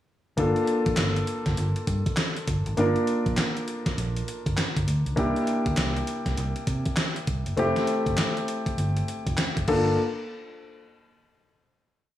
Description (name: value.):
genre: R&B, new jack swing.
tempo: 100 BPM.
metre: 4/4.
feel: swing 62% on 16ths.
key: G dorian.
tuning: A4 = 443 Hz.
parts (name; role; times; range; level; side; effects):
warm grand piano; accompaniment; 0.4-10.0 s; A3 to Bb4; -27 LUFS; left 1 dB; none.
vintage muted fingered electric bass; bass; 0.4-10.0 s; F1 to C3; -27 LUFS; equal; none.
gated 80s digital drum machine; drums; 0.4-9.9 s; crash cymbal, handclaps, hi-hat, kick drum, snare drum; -28 LUFS; equal; gated reverb, gated reverb snare, overdrive.
room: moderate plate reverb, RT60 1.7 s, digital ambience.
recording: studio reverb.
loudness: -23 LUFS.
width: side -12 dB against mid.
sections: 0.4-10.0 verse; 10.0-12.2 final hit.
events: none.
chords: 0.4 Gm7; 5.2 C7; 7.6 Fmaj7; 9.7 Gm7; 10.0 N.C..